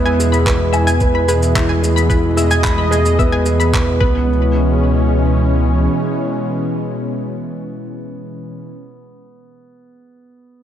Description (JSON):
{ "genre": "piano and strings electronica", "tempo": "110 BPM", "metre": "4/4", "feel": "straight", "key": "C# minor", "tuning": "A4 = 440 Hz", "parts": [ { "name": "lush unison pad", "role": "sustained chords", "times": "0.0-8.7 s", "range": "B2 to D#5", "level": "-20 LUFS", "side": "equal", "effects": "chorus, sidechain pumping" }, { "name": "felt-muted upright piano", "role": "riff", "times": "0.0-10.6 s", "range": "B3 to B5", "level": "-20 LUFS", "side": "equal", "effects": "ping-pong delay" }, { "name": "round analog bass", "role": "bass", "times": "0.0-5.9 s", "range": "C#2 to E2", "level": "-16 LUFS", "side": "equal", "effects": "sidechain pumping" }, { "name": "analog pluck", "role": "arpeggios", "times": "0.1-4.5 s", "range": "B4 to B5", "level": "-22 LUFS", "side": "left 3 dB", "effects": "chorus, sidechain pumping, ping-pong delay" }, { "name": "shaker and handclaps", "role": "drums", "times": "0.2-3.8 s", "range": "none", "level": "-25 LUFS", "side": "equal", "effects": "none" }, { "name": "electronic kick drum", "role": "drums", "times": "0.5-4.1 s", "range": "none", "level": "-18 LUFS", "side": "equal", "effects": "none" } ], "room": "light reverb, small room ambience", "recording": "none", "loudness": "-13 LUFS", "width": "side -10 dB against mid", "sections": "0.0-4.3 A section; 4.3-8.6 B section", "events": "drop 0.0-4.3", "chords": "0.0 E; 4.0 C#m7" }